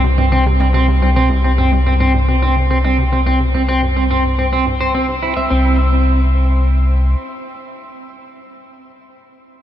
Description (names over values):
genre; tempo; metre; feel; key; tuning
ambient, sequencer-driven space music; 107 BPM; 4/4; straight; unclear; A4 = 441 Hz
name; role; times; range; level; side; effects
hollow square pluck; riff; 0.0-5.8 s; C2 to G3; -24 LUFS; equal; chorus, tape echo
warm sub bass; bass; 0.0-7.1 s; C2; -14 LUFS; equal; none
electric guitar at the edge of break-up; arpeggios; 0.2-5.8 s; C4 to E5; -17 LUFS; right 1 dB; auto-pan, tape echo, shimmer reverb
room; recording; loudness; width
moderate huge ambient reverb, RT60 8.2 s; dreamy mix soaked in reverb; -12 LUFS; side -11 dB against mid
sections
0.0-5.5 A section; 5.5-7.8 B section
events
fade-out on synth arpeggio sound 0.0-5.5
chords
0.0 C5; 5.5 N.C.